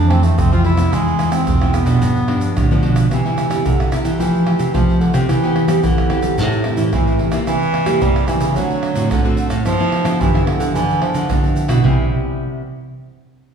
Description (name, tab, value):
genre	samba and choro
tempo	110 BPM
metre	4/4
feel	straight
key	C major from 3.1 s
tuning	A4 = 438 Hz
part	clear bass clarinet	second line	0.0-12.1 s	C3 to F4	-21 LUFS	right 3 dB	none
part	nylon-string guitar	accompaniment	0.0-12.6 s	F2 to G4	-19 LUFS	left 2 dB	none
part	nylon-string guitar	bass	0.0-12.1 s	E2 to G3	-18 LUFS	right 1 dB	none
part	pandeiro, tamborim, egg shaker and surdo	percussion	0.1-12.0 s	none	-21 LUFS	right 2 dB	none
room	wet recital hall reverb, RT60 1.5 s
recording	recorded in a church or concert hall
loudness	-14 LUFS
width	side -7 dB against mid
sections	0.0-3.1 A section; 3.1-11.8 B section; 11.8-13.5 C section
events	bass clarinet solo 0.0-3.1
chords	0.0 Fmaj7; 0.9 E; 2.0 G7; 3.1 Cmaj7; 4.2 Fmaj9; 5.3 Cmaj7/E; 6.4 Am7; 7.5 C7; 8.6 D7; 9.7 G6; 11.8 Cmaj7